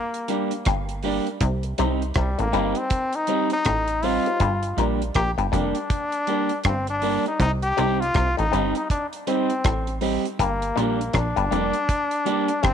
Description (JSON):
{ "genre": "roots reggae", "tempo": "80 BPM", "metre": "4/4", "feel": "swing 61% on 16ths", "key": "C dorian", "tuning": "A4 = 440 Hz", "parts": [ { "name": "brilliant trombone", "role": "melody", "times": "0.0-12.7 s", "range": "G3 to G4", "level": "-25 LUFS", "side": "left 2 dB", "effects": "dub echo" }, { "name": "deep reggae drum kit", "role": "drums", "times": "0.1-12.7 s", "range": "hi-hat, kick drum, rim click", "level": "-27 LUFS", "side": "right 1 dB", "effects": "none" }, { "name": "mellow electric guitar", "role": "accompaniment", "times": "0.3-12.5 s", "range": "G3 to G4", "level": "-28 LUFS", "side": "right 13 dB", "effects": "none" }, { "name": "dark upright piano", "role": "stabs", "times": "0.3-12.5 s", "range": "D4 to Eb5", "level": "-31 LUFS", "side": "left 11 dB", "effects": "none" }, { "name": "auto-wah clav", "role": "riff", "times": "0.7-12.7 s", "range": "F2 to C3", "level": "-28 LUFS", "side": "left 12 dB", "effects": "overdrive" }, { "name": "plucky analog bass", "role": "bass", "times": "0.7-12.7 s", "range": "F1 to C2", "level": "-25 LUFS", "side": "right 1 dB", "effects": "tube saturation" } ], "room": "light reverb, studio reverb", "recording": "1960s-style stereo with parts hard left and right", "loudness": "-21 LUFS", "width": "side -8 dB against mid", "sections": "0.0-7.4 A section; 7.4-12.7 B section", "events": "none", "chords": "0.0 Gm; 1.4 Cm; 4.4 Gm; 7.4 Cm; 10.4 Gm" }